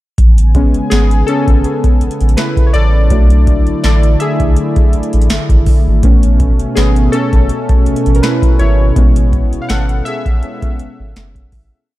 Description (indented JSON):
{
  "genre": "contemporary R&B",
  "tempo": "82 BPM",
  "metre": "4/4",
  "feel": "swing 54% on 16ths",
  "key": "A major",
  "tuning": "A4 = 443 Hz",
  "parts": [
    { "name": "warm analog pad", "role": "sustained chords", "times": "0.2-11.9 s", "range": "B2 to G#5", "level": "-19 LUFS", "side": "right 2 dB", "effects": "chorus" },
    { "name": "warm sub bass", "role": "bass", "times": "0.2-11.7 s", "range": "F#1 to B1", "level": "-12 LUFS", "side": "equal", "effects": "none" },
    { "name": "booming analog drum machine", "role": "drums", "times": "0.2-11.7 s", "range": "hi-hat, kick drum, snare drum", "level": "-12 LUFS", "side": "equal", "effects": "overdrive" },
    { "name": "warm analog keys", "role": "accompaniment", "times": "0.5-11.9 s", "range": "F#3 to F#5", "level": "-17 LUFS", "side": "left 3 dB", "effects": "chorus" }
  ],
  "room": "little or no reverb",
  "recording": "dark, warm production",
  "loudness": "-9 LUFS",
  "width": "side -16 dB against mid",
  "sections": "0.2-11.9 chorus",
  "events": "synth keys solo 0.2-11.9; fade-out 9.0-11.9",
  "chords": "0.2 Amaj9; 3.1 E7sus4; 6.0 Amaj9"
}